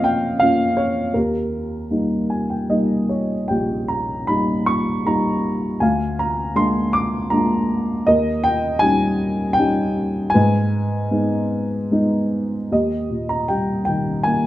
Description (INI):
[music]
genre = classical, lyrical solo piano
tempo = 78 BPM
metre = 3/4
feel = rubato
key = unclear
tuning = A4 = 439 Hz
[part]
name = dark upright piano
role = solo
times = 0.0-14.5 s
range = A#1 to D6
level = -18 LUFS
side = equal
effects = none
[sound]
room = moderate recital hall reverb, RT60 1.4 s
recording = dark, warm production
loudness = -18 LUFS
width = side -14 dB against mid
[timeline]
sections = 0.0-12.7 A section; 12.7-14.5 B section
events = upright piano fill 1.9-3.5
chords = 0.0 A#m/E#; 1.1 D#; 5.8 A#7/D; 8.1 D#7; 10.3 G#m; 12.7 D#